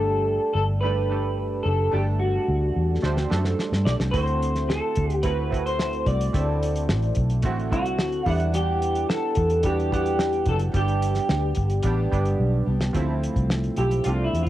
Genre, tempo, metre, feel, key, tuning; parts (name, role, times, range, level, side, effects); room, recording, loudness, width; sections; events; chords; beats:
indie pop, bedroom pop; 109 BPM; 4/4; straight; G major; A4 = 440 Hz
electric guitar through a small old amp; melody; 0.0-14.5 s; E4 to D5; -26 LUFS; equal; lush chorus, cassette tape, analog delay
chorused retro synth keys; accompaniment; 0.0-14.5 s; F3 to F#5; -30 LUFS; right 5 dB
fingerpicked steel-string acoustic guitar; accompaniment; 0.0-14.5 s; D3 to A4; -35 LUFS; left 6 dB; wide subtle chorus, warbly pitch drift
vintage muted fingered electric bass; bass; 0.0-14.5 s; F#1 to G2; -24 LUFS; equal
cloth-damped thuddy drum kit; drums; 3.0-14.5 s; hi-hat, kick drum, snare drum; -28 LUFS; equal
little or no reverb; home recording on cassette; -21 LUFS; side -14 dB against mid
0.0-12.9 A section; 12.9-14.5 B section
drum fill 3.0-4.1, 12.4-12.9; clean electric guitar solo 12.9-14.5
0.0 Gsus2; 4.1 D7; 8.3 Em7; 10.7 G; 12.9 Dm7
0.27 0.82 1.38 | 1.93 2.48 3.03 3.58 | 4.13 4.68 5.24 5.79 | 6.34 6.89 7.44 7.99 | 8.54 9.09 9.64 10.19 | 10.74 11.29 11.84 12.39 | 12.95 13.50 14.05